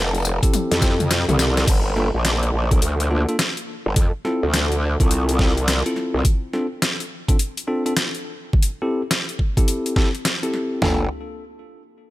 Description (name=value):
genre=glitch hop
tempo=105 BPM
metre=4/4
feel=swing 63% on 16ths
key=G dorian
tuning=A4 = 441 Hz
part: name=growl bass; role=bass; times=0.0-6.2, 10.8-11.1 s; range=F1 to F2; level=-20 LUFS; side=equal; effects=chorus
part: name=dubstep drum kit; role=drums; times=0.1-10.7 s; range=crash cymbal, hi-hat, snare drum, tambourine, toms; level=-23 LUFS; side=left 1 dB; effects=overdrive, small room ambience
part: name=bell-like tine electric piano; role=stabs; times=0.4-11.0 s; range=Bb3 to A4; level=-25 LUFS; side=left 1 dB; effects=sidechain pumping, low-pass filter, ping-pong delay
part: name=dubstep drum kit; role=drums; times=0.4-11.0 s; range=kick drum, snare drum, toms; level=-18 LUFS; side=equal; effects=overdrive, small room ambience
room=little or no reverb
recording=none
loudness=-18 LUFS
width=side -16 dB against mid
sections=0.0-1.7 A section; 1.7-10.8 B section; 10.8-12.1 C section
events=drop 0.0-1.7; drum fill 0.5-1.7; filter sweep on tine electric piano 1.7-10.8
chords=0.0 Fmaj7; 1.7 Gm7; 4.0 Dm7; 6.2 Csus24; 8.5 C6; 10.8 Gm7